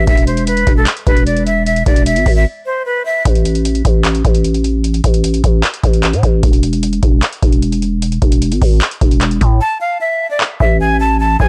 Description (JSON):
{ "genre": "hip hop, trap", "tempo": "151 BPM", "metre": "4/4", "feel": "half-time", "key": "A harmonic minor", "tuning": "A4 = 438 Hz", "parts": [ { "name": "breathy bright jazz flute", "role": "melody", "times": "0.0-3.2, 9.6-11.5 s", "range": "A4 to A5", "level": "-19 LUFS", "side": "equal", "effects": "delay" }, { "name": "growling 808-style bass", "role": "bass", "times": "0.0-11.5 s", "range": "E1 to A2", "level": "-17 LUFS", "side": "equal", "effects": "none" }, { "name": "booming analog drum machine", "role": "drums", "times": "0.1-11.5 s", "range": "handclaps, hi-hat, kick drum", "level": "-16 LUFS", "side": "equal", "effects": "vintage 12-bit sampler grit" } ], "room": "digital ambience", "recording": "dark, warm production", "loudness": "-14 LUFS", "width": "mono", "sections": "0.0-11.5 A section", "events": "break 2.5-3.3, 9.6-10.4; hi-hats muted 9.6-11.5", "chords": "0.1 N.C.; 9.6 A5" }